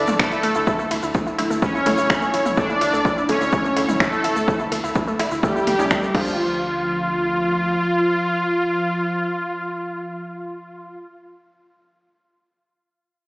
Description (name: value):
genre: melodic techno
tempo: 126 BPM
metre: 4/4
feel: straight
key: D harmonic minor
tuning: A4 = 438 Hz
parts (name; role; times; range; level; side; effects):
- resonant sweep polysynth; melody; 0.0-11.0 s; F3 to D4; -24 LUFS; equal; chorus, sidechain pumping, tape echo
- soft supersaw; second line; 0.0-11.0 s; F4 to D5; -23 LUFS; equal; cassette tape, sidechain pumping, tape echo
- warbly dusty pluck; arpeggios; 0.0-6.6 s; A3 to A5; -25 LUFS; equal; chorus, sidechain pumping, tape echo
- filtered dub chord stab; stabs; 0.0-11.0 s; D3 to F4; -28 LUFS; equal; none
- round analog bass; bass; 0.0-7.8 s; D1 to D2; -34 LUFS; equal; sidechain pumping
- deep house drum kit; drums; 0.1-6.2 s; crash cymbal, finger snaps, hi-hat, ride cymbal, toms; -25 LUFS; equal; overdrive
- egg shaker; percussion; 0.1-6.4 s; none; -41 LUFS; equal; none
- electronic kick drum; drums; 0.2-6.2 s; none; -23 LUFS; equal; overdrive
room: moderate lush hall reverb, RT60 1.7 s, digital ambience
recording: played on a big sound system in a bare room, stone room reverb, small speaker sound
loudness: -18 LUFS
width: side -27 dB against mid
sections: 0.0-6.4 A section; 6.4-10.2 B section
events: drop 0.0-6.4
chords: 0.0 Asus4/D; 6.1 Dm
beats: 0.19 | 0.67 1.15 1.62 2.10 | 2.58 3.05 3.53 4.00 | 4.48 4.96 5.43 5.91 | 6.38 6.86 7.34 7.81 | 8.29 8.77 9.24 9.72